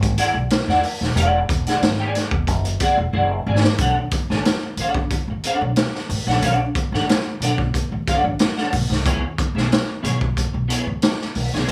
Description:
funk; 91 BPM; 4/4; straight; B dorian; A4 = 440 Hz
clean electric guitar; accompaniment; 0.0-11.7 s; B3 to G#5; -24 LUFS; equal; ensemble chorus, plate reverb
upright bass; bass; 0.0-11.7 s; D#1 to E2; -25 LUFS; equal
raw garage drum kit; drums; 0.0-11.7 s; hi-hat, kick drum, snare drum; -23 LUFS; equal
light reverb; small room ambience; -20 LUFS; mono
0.0-3.8 A section; 3.8-11.7 B section
drum fill 3.1-3.8
0.0 E9; 3.8 Bm9; 9.1 C#m7

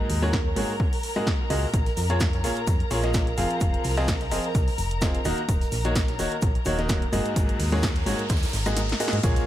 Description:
piano house; 128 BPM; 4/4; swing 55% on 16ths; A4 = 439 Hz
dark symphonic string section; sustained chords; 0.0-9.5 s; Bb4 to Bb5; -33 LUFS; equal; sidechain pumping
bright grand piano; riff; 0.0-9.5 s; Ab2 to F5; -28 LUFS; equal; sidechain pumping, dub echo
solid FM bass; bass; 0.1-9.4 s; Eb1 to Ab2; -27 LUFS; equal; sidechain pumping
punchy analog drum machine; drums; 0.1-9.4 s; hi-hat, rim click, snare drum; -32 LUFS; right 1 dB; dub echo
electronic kick drum; drums; 0.3-9.3 s; -25 LUFS; equal
vintage drum kit; drums; 1.7-9.5 s; hi-hat, shaker, snare drum; -40 LUFS; right 1 dB
riser and impact; sound effects; 6.6-9.5 s; -36 LUFS; equal
studio reverb; echo-heavy mix; -22 LUFS; side -12 dB against mid
0.0-9.2 A section
riser 6.6-9.2; kick drops out 8.8-9.2; drum fill 8.8-9.2; impact 9.2
0.0 Ab9sus4; 1.7 Bbm7; 3.4 Fm7; 5.3 Ebm7; 7.4 Ab9sus4

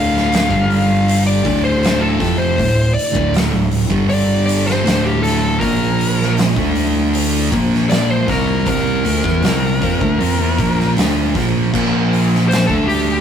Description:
stoner and doom metal; 79 BPM; 4/4; straight; A4 = 440 Hz
fuzz lead guitar; melody; 0.0-13.2 s; G4 to F5; -20 LUFS; left 2 dB; distortion
string machine, violas; sustained chords; 0.0-13.2 s; Bb2 to E5; -31 LUFS; left 2 dB
thick fuzz guitar; riff; 0.0-13.2 s; D2 to D4; -20 LUFS; left 8 dB; distortion
thick fuzz guitar; riff; 0.0-13.2 s; D2 to D4; -18 LUFS; right 5 dB; distortion
overdriven picked electric bass; bass; 0.0-13.2 s; D1 to F2; -23 LUFS; equal
oversized low-tuned drum kit; drums; 0.2-13.1 s; crash cymbal, hi-hat, kick drum, snare drum; -21 LUFS; equal
light reverb; rough rehearsal-room recording; -13 LUFS; side -8 dB against mid
0.0-13.2 A section
lead electric guitar solo 0.0-13.2
0.5 G5; 1.4 Dm; 3.9 G5; 4.9 D5; 5.6 Bb5; 6.6 D5; 7.5 Bb5; 12.7 D5

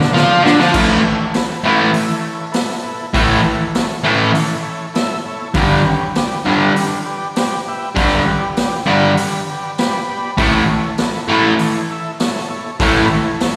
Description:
garage rock duo or trio; 100 BPM; 4/4; straight; A mixolydian; A4 = 440 Hz
overdriven combo organ; sustained chords; 0.0-13.6 s; D4 to B5; -25 LUFS; equal
fuzz guitar; riff; 0.0-13.0 s; G2 to F4; -16 LUFS; equal; distortion, slapback echo
raw garage drum kit; drums; 0.0-13.5 s; crash cymbal, hi-hat, kick drum, snare drum; -23 LUFS; equal
wet lush hall reverb, RT60 2.5 s; live gig heard through the venue's PA, recital hall reverb; -16 LUFS; mono
0.7-13.6 A section
drum fill 0.0-0.7; transistor combo organ fill 9.5-10.4
0.0 D5; 0.7 A; 5.6 G; 10.4 A

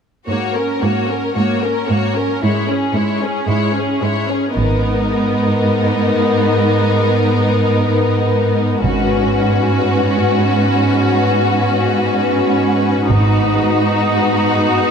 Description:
cinematic; 112 BPM; 4/4; straight; G# minor; A4 = 440 Hz
warm symphonic violin section; melody; 0.3-14.9 s; G#4 to C#5; -24 LUFS; left 6 dB
rich symphonic violin section; second line; 0.3-14.9 s; C#4 to A#4; -21 LUFS; left 4 dB
rich symphonic viola section; accompaniment; 0.3-14.9 s; G#3 to D#4; -20 LUFS; right 2 dB
warm symphonic cello section; bass; 0.3-14.9 s; G#2; -18 LUFS; right 3 dB
mellow French horn section; sustained chords; 4.5-14.9 s; B3 to A#4; -21 LUFS; left 4 dB
clear studio double bass section; bass; 4.6-5.1, 8.8-9.3, 13.1-13.6 s; G#1; -19 LUFS; right 2 dB
timpani; percussion; 8.8-9.6, 13.1-13.9 s; G#2; -23 LUFS; left 2 dB
moderate concert hall reverb, RT60 2.4 s; -13 LUFS; side -6 dB against mid
0.3-4.6 A section; 4.6-14.9 B section
build-up 4.6-14.9
0.3 F#/G#; 2.4 C#m/G#; 4.6 G#madd9; 8.8 F#sus4/G#; 13.1 B/G#

